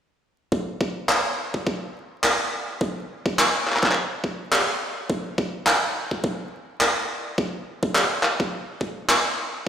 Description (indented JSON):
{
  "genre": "glitch hop",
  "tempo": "105 BPM",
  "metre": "4/4",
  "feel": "swing 56% on 16ths",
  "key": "none",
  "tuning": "none",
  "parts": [
    { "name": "electronic kick drum", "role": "drums", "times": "0.5-8.9 s", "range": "none", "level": "-24 LUFS", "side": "equal", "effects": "overdrive, high-pass filter on kick, studio reverb" },
    { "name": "handclaps", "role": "drums", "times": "1.1-9.2 s", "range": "none", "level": "-21 LUFS", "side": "equal", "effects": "studio reverb" }
  ],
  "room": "wet lush hall reverb, RT60 2.4 s",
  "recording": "played on a big sound system in a bare room, stone room reverb, vinyl crackle",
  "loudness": "-21 LUFS",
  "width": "side -8 dB against mid",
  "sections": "0.5-9.7 A section",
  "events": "none",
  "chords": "none"
}